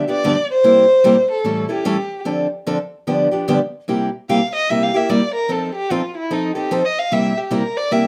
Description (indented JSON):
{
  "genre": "jazz",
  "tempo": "148 BPM",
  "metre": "4/4",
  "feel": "swing 62% on 8ths",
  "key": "C mixolydian",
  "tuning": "A4 = 439 Hz",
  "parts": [
    { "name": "picked old ladder-braced acoustic guitar", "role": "accompaniment", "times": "0.0-8.1 s", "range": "G2 to A4", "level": "-20 LUFS", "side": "equal", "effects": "none" },
    { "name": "dark violin", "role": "melody", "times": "0.1-8.1 s", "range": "Eb4 to F5", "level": "-19 LUFS", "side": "equal", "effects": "plate reverb" }
  ],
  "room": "wet studio reverb, RT60 0.6 s",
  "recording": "none",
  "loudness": "-18 LUFS",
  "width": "mono",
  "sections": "0.0-3.9 A section; 3.9-8.1 B section",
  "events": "violin solo 3.9-8.1",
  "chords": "0.0 G7; 0.6 C7; 1.4 A7; 2.2 Dm7; 3.1 G7; 3.9 C7; 5.5 F7; 7.1 C7"
}